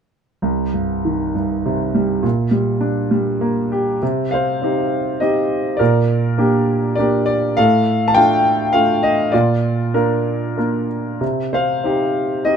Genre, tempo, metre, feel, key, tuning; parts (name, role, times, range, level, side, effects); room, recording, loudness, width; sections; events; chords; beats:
classical, lyrical solo piano; 93-106 BPM; 3/4; rubato; C dorian; A4 = 441 Hz
warm grand piano; solo; 0.4-12.6 s; C2 to A5; -15 LUFS; equal
moderate small room reverb, RT60 0.5 s; minimal, uncompressed stereo recording; -15 LUFS; side -7 dB against mid
0.4-4.0 A section; 4.0-12.6 B section
0.4 Cm; 2.2 Gm/Bb; 4.0 Cm; 5.8 Gm/Bb; 7.6 Dm/A; 9.3 Bb; 11.2 Cm
| 0.43 1.05 1.66 | 2.24 2.81 3.41 | 4.02 4.63 5.22 | 5.80 6.39 6.98 | 7.58 8.16 8.74 | 9.33 9.94 10.57 | 11.21 11.84 12.44